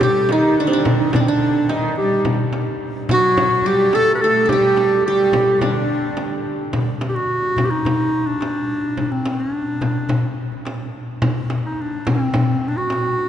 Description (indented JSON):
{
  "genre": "Turkish makam ensemble",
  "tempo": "107 BPM",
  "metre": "4/4",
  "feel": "straight",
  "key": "D makam hicaz",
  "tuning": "A4 = 441 Hz",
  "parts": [
    { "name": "clear clarinet", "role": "melody", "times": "0.0-13.3 s", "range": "C4 to B4-37c", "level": "-19 LUFS", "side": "equal", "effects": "none" },
    { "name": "qanun", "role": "second line", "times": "0.0-7.1 s", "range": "C4 to A4", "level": "-23 LUFS", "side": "right 4 dB", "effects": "none" },
    { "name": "warm symphonic cello section", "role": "second line", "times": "0.0-6.5 s", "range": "D3 to A3", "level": "-26 LUFS", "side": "left 1 dB", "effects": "none" },
    { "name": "darbuka", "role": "percussion", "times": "0.0-13.3 s", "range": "none", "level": "-24 LUFS", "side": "left 3 dB", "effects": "none" },
    { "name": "frame drum", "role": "percussion", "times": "0.0-13.0 s", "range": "none", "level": "-25 LUFS", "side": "right 2 dB", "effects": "none" }
  ],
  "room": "wet cathedral reverb, RT60 6.2 s",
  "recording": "recorded in a church or concert hall, nothing above 10.5 kHz",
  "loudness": "-16 LUFS",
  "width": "side -10 dB against mid",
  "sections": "0.0-6.7 A section; 6.7-13.3 B section",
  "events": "none",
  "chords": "none",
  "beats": "| 0.01 0.57 1.13 1.69 | 2.25 2.81 3.37 3.93 | 4.49 5.05 5.62 6.18 | 6.74 7.30 7.86 8.42 | 8.98 9.54 10.11 10.67 | 11.23 11.79 12.35 12.91"
}